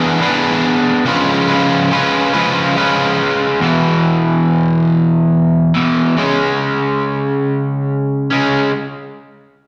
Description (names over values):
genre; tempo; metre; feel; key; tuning
rock; 47 BPM (dotted quarters); 6/8; straight; unclear; A4 = 440 Hz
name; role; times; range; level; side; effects
overdriven semi-hollow guitar; solo; 0.0-8.7 s; E2 to B4; -15 LUFS; equal; spring reverb
room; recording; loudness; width
wet recital hall reverb, RT60 1.4 s; recorded in a church or concert hall; -15 LUFS; mono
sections
0.0-3.6 A section; 3.6-8.7 B section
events
none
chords
0.0 E5; 1.1 C#7; 3.6 E5; 6.2 C#5; 8.7 N.C.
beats
| 1.06 2.34 | 3.62 4.89 | 6.18 7.46